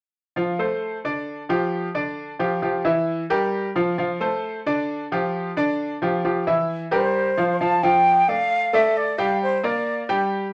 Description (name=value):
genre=latin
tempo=133 BPM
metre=4/4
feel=straight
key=F major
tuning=A4 = 441 Hz
part: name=bright grand piano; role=arpeggios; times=0.4-10.5 s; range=D3 to G5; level=-24 LUFS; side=equal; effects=none
part: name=breathy silver concert flute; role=melody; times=6.9-10.1 s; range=C5 to A5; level=-22 LUFS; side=equal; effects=none
room=moderate small room reverb, RT60 0.5 s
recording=none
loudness=-22 LUFS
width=mono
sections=0.4-7.6 A section; 7.6-10.5 B section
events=none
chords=0.4 F; 1.3 Dmadd11; 2.2 G5; 3.1 Edim; 4.0 F; 4.9 Dmadd11; 5.8 G5; 6.7 C7; 7.6 F; 8.5 D5; 9.4 Gm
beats=| 0.37 0.82 1.27 1.72 | 2.18 2.63 3.08 3.53 | 3.99 4.44 4.89 5.34 | 5.79 6.25 6.70 7.15 | 7.60 8.05 8.51 8.96 | 9.41 9.86 10.31